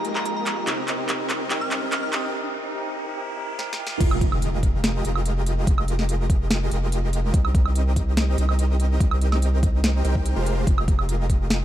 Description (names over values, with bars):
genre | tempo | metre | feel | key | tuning
future bass | 144 BPM | 4/4 | half-time | F minor | A4 = 444 Hz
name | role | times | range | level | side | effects
glassy synth bell | melody | 0.0-2.3 s | Bb5 to F6 | -32 LUFS | right 1 dB | chorus, tremolo, sidechain pumping, digital delay
tine electric piano | accompaniment | 0.0-4.0 s | C3 to Bb4 | -32 LUFS | right 2 dB | overdrive, fast stereo tremolo, sidechain pumping, digital delay
ethereal airy pad | sustained chords | 0.0-2.3 s | G3 to G5 | -38 LUFS | left 2 dB | ensemble chorus, built-in reverb, sidechain pumping
supersaw chords | riff | 0.0-11.6 s | Ab3 to G5 | -30 LUFS | equal | sidechain pumping, low-pass filter, digital delay
trap drum kit | drums | 0.0-11.6 s | crash cymbal, handclaps, hi-hat, snare drum, woodblock | -28 LUFS | right 1 dB | overdrive
riser and impact | sound effects | 0.0-5.7 s | none | -33 LUFS | right 1 dB | none
saturated sub bass | bass | 4.0-11.6 s | F1 to C2 | -22 LUFS | equal | sidechain pumping
electronic kick drum | drums | 4.0-11.4 s | none | -21 LUFS | equal | overdrive
room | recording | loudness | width
light reverb, digital ambience | dark, warm production, high-pass filter | -20 LUFS | side -12 dB against mid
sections
0.0-4.0 A section; 4.0-11.6 B section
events
build-up 0.0-4.0; drum fill 0.0-2.3, 3.6-4.0; riser 0.0-4.0; filter sweep on ambient pad 0.0-4.0; break 2.3-4.0; drop 4.0-11.6; impact 4.0-5.7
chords
0.0 Fm11; 0.7 Cm7; 4.0 Fm11